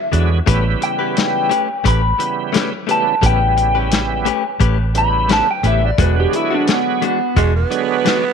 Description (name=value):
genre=straight-eighth soul blues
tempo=87 BPM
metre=4/4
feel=straight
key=unclear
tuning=A4 = 440 Hz
part: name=electric guitar through a small old amp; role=melody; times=0.0-7.4 s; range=B3 to B5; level=-18 LUFS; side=left 1 dB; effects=wide subtle chorus
part: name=bright tonewheel organ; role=accompaniment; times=0.1-8.2 s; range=C#3 to B3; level=-22 LUFS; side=right 12 dB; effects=slow rotary speaker, overdrive, chorus vibrato
part: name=direct-recorded clean electric guitar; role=stabs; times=0.1-8.3 s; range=E3 to B4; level=-23 LUFS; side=left 11 dB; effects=spring reverb
part: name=vintage muted fingered electric bass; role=bass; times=0.1-7.6 s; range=E1 to E2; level=-17 LUFS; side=right 1 dB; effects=none
part: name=warm soul drum kit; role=drums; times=0.1-8.2 s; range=hi-hat, kick drum, snare drum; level=-19 LUFS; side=left 3 dB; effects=none
part: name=growling tenor saxophone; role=second line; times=7.4-8.3 s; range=G#3 to B3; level=-18 LUFS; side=right 8 dB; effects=none
room=light reverb, studio reverb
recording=1960s-style stereo with parts hard left and right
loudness=-14 LUFS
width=side -6 dB against mid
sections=0.0-8.3 A section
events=none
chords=0.5 A9; 6.0 E9